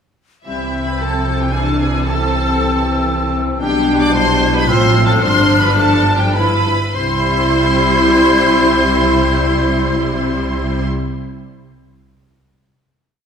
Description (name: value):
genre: quick classical-period movement for symphony orchestra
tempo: 100-116 BPM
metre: 3/4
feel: straight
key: C major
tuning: A4 = 444 Hz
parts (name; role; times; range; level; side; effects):
- rich studio violin section; melody; 0.5-10.9 s; E5 to D6; -21 LUFS; equal; none
- bright small flute group; second line; 0.5-10.9 s; E6 to G6; -22 LUFS; left 3 dB; none
- clear clarinet; second line; 0.5-10.9 s; C4 to E4; -21 LUFS; equal; none
- rich studio violin section; second line; 0.5-10.9 s; E4 to D5; -23 LUFS; left 1 dB; none
- rich studio viola section; accompaniment; 0.5-10.9 s; E3 to F4; -22 LUFS; right 1 dB; none
- mellow French horn section; sustained chords; 0.5-10.9 s; E3 to F4; -20 LUFS; left 2 dB; none
- rich studio cello section; bass; 0.5-10.9 s; G2 to C3; -21 LUFS; equal; none
- rich studio double bass section; bass; 0.5-10.9 s; G1 to C2; -21 LUFS; right 2 dB; none
room: wet scoring stage reverb, RT60 1.8 s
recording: minimal, uncompressed stereo recording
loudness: -12 LUFS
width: side -7 dB against mid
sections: 0.5-6.9 A section; 6.9-10.4 final chord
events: slowing down 2.8-6.9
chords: 0.5 C; 1.5 E7/C; 2.0 Am/C; 3.6 G/B; 4.7 F/A; 5.2 G5; 6.4 G6; 6.9 C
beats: | 0.46 1.00 1.52 | 2.04 2.56 3.08 | 3.61 4.14 4.68 | 5.23 5.78 6.35 | 6.94 7.53 8.11 | 8.69 9.27 9.85